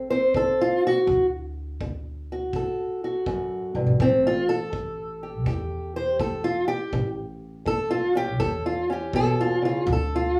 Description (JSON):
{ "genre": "acoustic country blues, solo or duo", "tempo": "82 BPM", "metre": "4/4", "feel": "swing 66% on 8ths", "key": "unclear", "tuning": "A4 = 440 Hz", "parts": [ { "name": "fingerpicked old ladder-braced acoustic guitar", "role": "melody", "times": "0.0-10.4 s", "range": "D2 to C5", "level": "-25 LUFS", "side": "equal", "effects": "none" }, { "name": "upright bass", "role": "bass", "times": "0.0-10.4 s", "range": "A1 to E2", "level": "-32 LUFS", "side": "equal", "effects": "none" }, { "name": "kick drum", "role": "drums", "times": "0.3-10.1 s", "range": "none", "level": "-35 LUFS", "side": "equal", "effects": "none" } ], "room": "light reverb", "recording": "band playing live in one room, small room reverb", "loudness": "-25 LUFS", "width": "mono", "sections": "0.0-10.4 A section", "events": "steel-string acoustic guitar solo 0.0-10.4", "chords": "0.0 D7; 4.0 A7; 9.9 D5" }